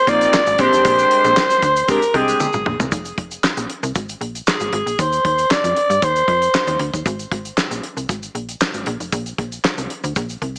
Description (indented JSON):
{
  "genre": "early-eighties boogie funk",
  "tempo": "116 BPM",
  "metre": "4/4",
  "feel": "straight",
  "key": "F dorian",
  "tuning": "A4 = 440 Hz",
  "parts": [
    { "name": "raspy alto saxophone", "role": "melody", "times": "0.0-6.8 s", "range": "Ab4 to D5", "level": "-15 LUFS", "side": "equal", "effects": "tape echo" },
    { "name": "chorused polysynth", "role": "accompaniment", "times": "0.1-2.5 s", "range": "Ab3 to G4", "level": "-20 LUFS", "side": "equal", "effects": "none" },
    { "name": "slap-like FM bass", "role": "bass", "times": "0.1-10.6 s", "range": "F1 to G2", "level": "-24 LUFS", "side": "equal", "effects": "none" },
    { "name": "damped 70s drum kit", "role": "drums", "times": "0.1-10.6 s", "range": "handclaps, hi-hat, kick drum, snare drum, toms", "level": "-21 LUFS", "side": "equal", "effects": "gated reverb" },
    { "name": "tube shaker", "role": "percussion", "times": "0.1-10.6 s", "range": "none", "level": "-33 LUFS", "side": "right 1 dB", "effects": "none" }
  ],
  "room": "light reverb",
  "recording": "small speaker sound",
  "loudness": "-15 LUFS",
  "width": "side -30 dB against mid",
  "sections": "0.0-2.9 A section; 2.9-10.6 B section",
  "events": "drum fill 2.4-2.9",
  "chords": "0.0 Abadd9; 0.6 Bb13; 2.9 Fm; 5.0 Ebmaj7(no3); 7.1 Absus2; 8.9 Bbsus2",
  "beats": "0.33 | 0.85 1.37 1.88 2.40 | 2.92 3.44 3.95 4.47 | 4.99 5.50 6.02 6.54 | 7.06 7.57 8.09 8.61 | 9.12 9.64 10.16"
}